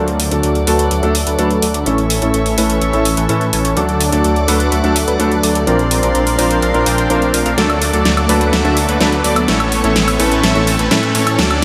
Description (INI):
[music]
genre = EDM, festival progressive house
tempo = 126 BPM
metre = 4/4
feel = straight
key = D major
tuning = A4 = 440 Hz
[part]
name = warm concert grand piano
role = accompaniment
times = 0.0-11.5 s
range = A3 to Bb4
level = -22 LUFS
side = equal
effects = dub echo
[part]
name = rich chamber string section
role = sustained chords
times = 0.0-11.6 s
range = A4 to D6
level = -26 LUFS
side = equal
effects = low-pass filter
[part]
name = supersaw chords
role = riff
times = 0.0-11.6 s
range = E3 to G5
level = -18 LUFS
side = equal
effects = low-pass filter, dub echo
[part]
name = detuned saw bass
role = bass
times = 0.0-11.6 s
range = A1 to A2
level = -22 LUFS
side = equal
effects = none
[part]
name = riser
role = sound effects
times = 4.8-11.6 s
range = none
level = -29 LUFS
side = equal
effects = none
[part]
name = big-room dance drum kit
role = drums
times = 0.1-11.6 s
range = hi-hat, snare drum, woodblock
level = -21 LUFS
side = equal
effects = none
[sound]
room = moderate lush hall reverb, RT60 1.9 s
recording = none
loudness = -14 LUFS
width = mono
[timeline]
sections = 0.0-11.6 A section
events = build-up 0.0-11.6; filter sweep on supersaw synth 0.0-11.6; drum fill 7.6-11.6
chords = 0.0 D; 1.9 A; 3.8 D; 5.7 Bbadd9; 7.6 D; 9.5 A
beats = 0.43 0.91 1.39 | 1.86 2.34 2.81 3.29 | 3.77 4.24 4.72 5.20 | 5.67 6.15 6.62 7.10 | 7.58 8.05 8.53 9.01 | 9.48 9.96 10.43 10.91 | 11.39